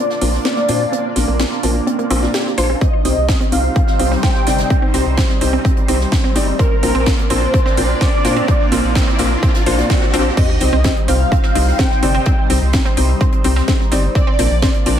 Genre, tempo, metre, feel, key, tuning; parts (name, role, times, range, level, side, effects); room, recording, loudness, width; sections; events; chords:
progressive house; 127 BPM; 4/4; straight; C minor; A4 = 440 Hz
wide unison lead; melody; 0.0-15.0 s; Bb4 to G5; -21 LUFS; equal; ensemble chorus, tape echo
lush unison pad; sustained chords; 0.0-15.0 s; G3 to D5; -24 LUFS; equal; chorus, phaser, sidechain pumping
natural country drum kit; drums; 0.1-15.0 s; hi-hat, snare drum; -31 LUFS; right 3 dB; high-pass filter on hats, high-pass filter on snare, high-pass filter on room
analog pluck; arpeggios; 0.2-14.9 s; Bb3 to C5; -22 LUFS; equal; chorus, vintage 12-bit sampler grit, sidechain pumping, tape echo
felt-muted upright piano; stabs; 0.2-15.0 s; Bb2 to D5; -23 LUFS; left 3 dB; vintage 12-bit sampler grit, sidechain pumping, tape echo
round analog bass; bass; 0.2-15.0 s; G1 to Bb2; -18 LUFS; equal; sidechain pumping
house drum kit; drums; 0.2-15.0 s; crash cymbal, hi-hat, snare drum; -24 LUFS; right 1 dB; sidechain pumping on hats, high-pass filter on hats, high-pass filter on snare, sidechain pumping on cymbals, high-pass filter on cymbals
electronic kick drum; drums; 2.8-14.7 s; -16 LUFS; equal; overdrive
riser, swell and sub drop; sound effects; 5.5-12.3 s; -27 LUFS; right 1 dB
moderate plate reverb, RT60 1.0 s, small room ambience; dreamy mix soaked in reverb; -13 LUFS; side -9 dB against mid
0.0-10.4 A section; 10.4-15.0 B section
build-up 0.0-10.4; filter sweep on synth arpeggio sound 0.0-10.4; filter sweep on analog synth lead 0.0-10.4; swell 9.4-10.4; drop 10.4-15.0; impact 10.4-12.3
0.0 Bb; 2.8 Cm; 6.6 Bb; 10.4 Cm; 14.2 Bb